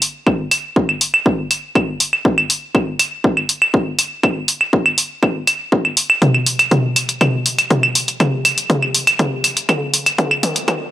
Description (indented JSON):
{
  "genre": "melodic techno",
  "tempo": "121 BPM",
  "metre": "4/4",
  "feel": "straight",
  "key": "none",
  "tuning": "none",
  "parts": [
    { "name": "punchy analog drum machine", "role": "drums", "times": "0.0-10.8 s", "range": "claves, hi-hat, toms", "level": "-14 LUFS", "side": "equal", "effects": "sidechain pumping on perc, sidechain pumping on hats, sidechain pumping on toms" },
    { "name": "electronic kick drum", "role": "drums", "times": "0.3-10.8 s", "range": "none", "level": "-17 LUFS", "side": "equal", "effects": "high-pass filter on kick, high-pass filter on room" }
  ],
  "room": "light reverb",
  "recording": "dry, gritty hardware recording, high-pass filter",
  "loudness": "-14 LUFS",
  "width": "side -14 dB against mid",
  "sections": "0.0-10.9 A section",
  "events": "build-up 0.0-10.9; drum fill 6.2-10.9",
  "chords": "none"
}